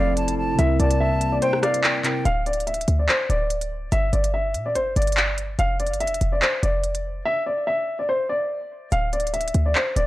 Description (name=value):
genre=hip hop, drill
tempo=144 BPM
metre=4/4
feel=half-time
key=D minor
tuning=A4 = 440 Hz
part: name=dark baby grand piano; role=melody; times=0.0-10.1 s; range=C5 to F5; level=-24 LUFS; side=equal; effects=low-pass filter, analog delay
part: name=silver concert flute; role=second line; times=0.0-2.2 s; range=F5 to A5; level=-30 LUFS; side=equal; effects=analog delay
part: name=mellow tine electric piano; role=accompaniment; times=0.0-2.3 s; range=C3 to Bb4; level=-25 LUFS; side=left 1 dB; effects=lush chorus, low-pass filter
part: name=dark analog pad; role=sustained chords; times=0.0-2.2 s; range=C3 to E4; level=-30 LUFS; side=right 2 dB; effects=wide subtle chorus
part: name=short 808-style bass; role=bass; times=0.0-10.1 s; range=D1 to Bb2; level=-23 LUFS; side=equal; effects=none
part: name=drill drum kit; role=drums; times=0.2-10.1 s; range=handclaps, hi-hat, rim click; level=-24 LUFS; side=equal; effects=none
room=digital ambience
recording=dry, gritty hardware recording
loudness=-20 LUFS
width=side -16 dB against mid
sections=0.0-2.3 A section; 2.3-10.1 B section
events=kick muted 1.4-2.3; drums muted 7.3-8.9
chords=0.0 Fmaj7; 0.6 C7; 2.3 N.C.; 3.9 Gm; 5.6 Dm/F; 7.3 N.C.; 8.9 Dsus2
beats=0.17 | 0.59 1.00 1.42 1.84 | 2.25 2.67 3.09 3.50 | 3.92 4.34 4.75 5.17 | 5.59 6.00 6.42 6.84 | 7.25 7.67 8.09 8.50 | 8.92 9.34 9.75